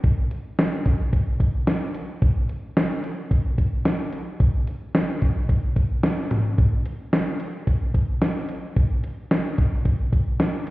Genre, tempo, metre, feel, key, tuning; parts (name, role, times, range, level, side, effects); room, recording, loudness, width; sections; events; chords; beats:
pop; 110 BPM; 4/4; straight
clean 12-bit digital drum machine; drums; 0.0-10.7 s; hi-hat, kick drum, snare drum, toms; -21 LUFS; equal
moderate lush hall reverb, RT60 2.0 s, digital ambience; heard muffled through a wall, stone room reverb, EQ; -20 LUFS; side -19 dB against mid
0.0-6.6 A section; 6.6-10.7 B section
| 0.04 0.58 1.13 1.67 | 2.22 2.77 3.31 3.86 | 4.40 4.95 5.49 6.04 | 6.58 7.13 7.67 8.22 | 8.77 9.31 9.86 10.40